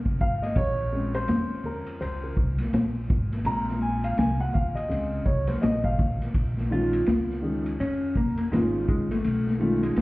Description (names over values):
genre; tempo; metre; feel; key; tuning
hip hop, jazz-hop; 83 BPM; 4/4; swing 61% on 16ths; Bb minor; A4 = 439 Hz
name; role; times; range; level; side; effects
upright bass; bass; 0.0-10.0 s; Ab1 to F2; -30 LUFS; equal; none
vintage drum kit; drums; 0.1-10.0 s; hi-hat, kick drum, ride cymbal, snare drum; -27 LUFS; equal; none
maracas and congas; percussion; 0.1-6.3 s; none; -38 LUFS; right 1 dB; none
dark upright piano; accompaniment; 0.2-10.0 s; Bb2 to Bb5; -28 LUFS; equal; none
vintage hollow-body jazz guitar; melody; 6.7-10.0 s; Ab3 to F4; -28 LUFS; left 1 dB; none
room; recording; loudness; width
light reverb; heard muffled through a wall, club reverb, vinyl crackle, EQ; -23 LUFS; side -19 dB against mid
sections
0.0-6.3 A section; 6.3-10.0 B section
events
upright piano solo 0.0-6.3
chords
0.0 B(#11) (rootless); 0.6 Bbm7; 9.2 B